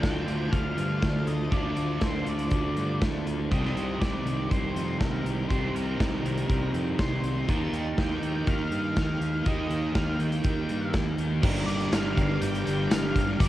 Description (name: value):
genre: rock, shoegaze and dream pop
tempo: 121 BPM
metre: 4/4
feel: straight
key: G minor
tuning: A4 = 439 Hz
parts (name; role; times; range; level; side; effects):
- octave-fuzz lead guitar; melody; 0.0-13.5 s; Bb4 to A5; -36 LUFS; left 1 dB; distortion, cassette tape, tape echo
- soft additive organ-like pad; sustained chords; 0.0-13.5 s; Eb4 to Bb5; -38 LUFS; equal; ensemble chorus, built-in reverb, cassette tape
- crunchy overdriven guitar; riff; 0.0-13.5 s; C3 to Bb4; -32 LUFS; right 6 dB; reverse reverb, cassette tape
- thick fuzz guitar; riff; 0.0-13.5 s; G2 to Eb4; -32 LUFS; left 5 dB; distortion, lush chorus, cassette tape
- fuzz fingered electric bass; bass; 0.0-13.5 s; G1 to G2; -32 LUFS; equal; overdrive
- big rock drum kit; drums; 0.0-13.5 s; crash cymbal, hi-hat, kick drum, snare drum; -29 LUFS; equal; cassette tape
- tambourine; percussion; 11.9-13.0 s; none; -45 LUFS; right 7 dB; none
room: little or no reverb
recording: home recording on cassette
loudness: -25 LUFS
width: side -14 dB against mid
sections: 0.0-11.4 A section; 11.4-13.5 B section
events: none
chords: 0.0 Dm7; 3.5 Cm7; 7.5 Ebadd9; 11.4 Gm7